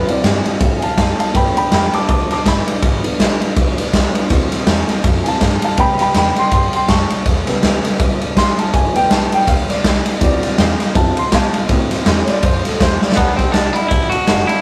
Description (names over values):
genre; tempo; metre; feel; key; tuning
rockabilly; 162 BPM; 4/4; swing 58% on 8ths; D mixolydian; A4 = 439 Hz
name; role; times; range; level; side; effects
dark upright piano; accompaniment; 0.0-14.6 s; C#3 to D6; -21 LUFS; equal; none
picked steel-string acoustic guitar; accompaniment; 0.0-14.6 s; G2 to B4; -31 LUFS; equal; none
upright bass; bass; 0.0-14.5 s; F#1 to B2; -25 LUFS; equal; none
raw garage drum kit; drums; 0.1-14.6 s; kick drum, ride cymbal, snare drum; -17 LUFS; equal; none
twangy electric guitar; melody; 13.2-14.6 s; B3 to F#4; -20 LUFS; equal; none
room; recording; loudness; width
moderate stone room reverb, RT60 1.1 s; rough rehearsal-room recording; -15 LUFS; mono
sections
0.0-13.2 A section; 13.2-14.6 B section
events
upright piano solo 0.0-13.2; drum fill 13.0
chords
0.0 D7; 1.3 G7; 2.8 G#dim7; 4.3 D7; 5.8 A7; 8.7 G7; 10.2 D7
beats
0.24 0.61 0.98 | 1.35 1.72 2.09 2.46 | 2.83 3.19 3.56 3.93 | 4.30 4.67 5.04 5.41 | 5.78 6.15 6.52 6.89 | 7.26 7.63 8.00 8.37 | 8.73 9.10 9.47 9.84 | 10.21 10.58 10.95 11.32 | 11.69 12.06 12.43 12.80 | 13.16 13.54 13.90 14.28